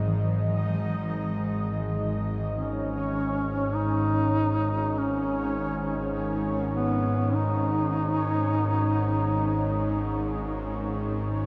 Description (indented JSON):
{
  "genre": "dark ambient drone",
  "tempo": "free time",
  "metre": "none",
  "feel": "none",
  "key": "unclear",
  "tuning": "A4 = 441 Hz",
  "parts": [
    { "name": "gamelan-type bronze metallophone", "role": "arpeggios", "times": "0.0-2.8 s", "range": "E3", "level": "-37 LUFS", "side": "equal", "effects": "delay" },
    { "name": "bowed-like drone", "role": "drone", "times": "0.0-11.5 s", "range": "G#1 to G#2", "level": "-30 LUFS", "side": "equal", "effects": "built-in reverb" },
    { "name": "bubbling stepped-filter texture", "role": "texture", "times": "0.0-11.5 s", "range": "C#4 to D#5", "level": "-37 LUFS", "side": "equal", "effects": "chorus, built-in reverb" },
    { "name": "mellow duduk", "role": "melody", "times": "2.5-10.9 s", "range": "B3 to D#4", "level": "-30 LUFS", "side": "equal", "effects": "delay" }
  ],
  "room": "wet huge ambient reverb, RT60 7.5 s",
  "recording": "none",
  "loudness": "-27 LUFS",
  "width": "mono",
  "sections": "0.0-2.5 A section; 2.5-11.5 B section",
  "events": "none",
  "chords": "0.0 E/G#"
}